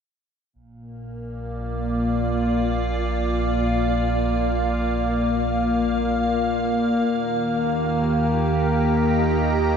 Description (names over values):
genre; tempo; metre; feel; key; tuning
ambient; free time; none; none; Bb major; A4 = 441 Hz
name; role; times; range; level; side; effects
evolving wavetable pad; sustained chords; 0.9-9.8 s; Bb2 to Bb5; -21 LUFS; equal; chorus, built-in reverb, shimmer reverb
round analog bass; bass; 0.6-9.8 s; Bb1 to Eb2; -28 LUFS; equal; none
room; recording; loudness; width
wet concert hall reverb, RT60 2.4 s; nothing above 7.8 kHz; -20 LUFS; side -7 dB against mid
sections
0.5-9.8 A section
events
none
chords
0.5 Bb; 7.1 Eb